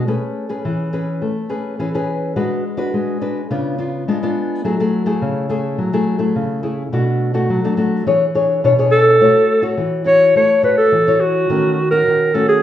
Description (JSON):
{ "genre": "samba", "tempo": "105 BPM", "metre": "4/4", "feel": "straight", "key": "A major", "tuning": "A4 = 440 Hz", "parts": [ { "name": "nylon-string guitar", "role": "accompaniment", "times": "0.0-12.6 s", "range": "B2 to C#5", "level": "-17 LUFS", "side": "left 2 dB", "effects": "none" }, { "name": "breathy clarinet", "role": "melody", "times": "8.9-12.6 s", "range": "F#4 to C#5", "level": "-12 LUFS", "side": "right 1 dB", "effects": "none" } ], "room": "wet large studio reverb, RT60 0.9 s", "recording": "heard from further back in the room", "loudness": "-14 LUFS", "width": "side -11 dB against mid", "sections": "0.1-9.2 A section; 9.2-12.6 B section", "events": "none", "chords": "0.1 Amaj9; 2.4 G#m7b5; 3.5 C#7b9; 4.6 F#m9; 6.9 Bm7; 8.1 E6; 9.2 A6; 11.5 D#m7b5" }